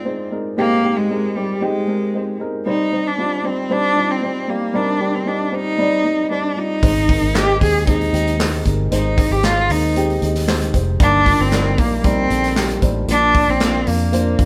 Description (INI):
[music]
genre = piano-driven pop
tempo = 115 BPM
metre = 4/4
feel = straight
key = unclear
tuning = A4 = 439 Hz
[part]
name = rich cello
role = melody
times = 0.0-14.5 s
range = G3 to Ab4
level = -21 LUFS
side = equal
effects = none
[part]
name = dark upright piano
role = accompaniment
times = 0.0-14.5 s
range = G2 to F5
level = -24 LUFS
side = equal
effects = none
[part]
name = vintage muted fingered electric bass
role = bass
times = 6.8-14.5 s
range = F1 to F2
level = -23 LUFS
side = equal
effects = none
[part]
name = natural country drum kit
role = drums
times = 6.8-14.5 s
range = handclaps, hi-hat, kick drum, snare drum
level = -22 LUFS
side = equal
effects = none
[sound]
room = light reverb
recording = band playing live in one room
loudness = -18 LUFS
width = mono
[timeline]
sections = 0.0-14.5 A section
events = none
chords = 0.0 Ab; 2.7 Cm; 6.8 Ab; 11.0 Eb/G; 13.1 Bb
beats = 0.05 | 0.57 1.09 1.61 2.14 | 2.66 3.18 3.70 4.22 | 4.74 5.26 5.79 6.31 | 6.83 7.35 7.87 8.39 | 8.91 9.44 9.96 10.48 | 11.00 11.52 12.04 12.56 | 13.09 13.61 14.13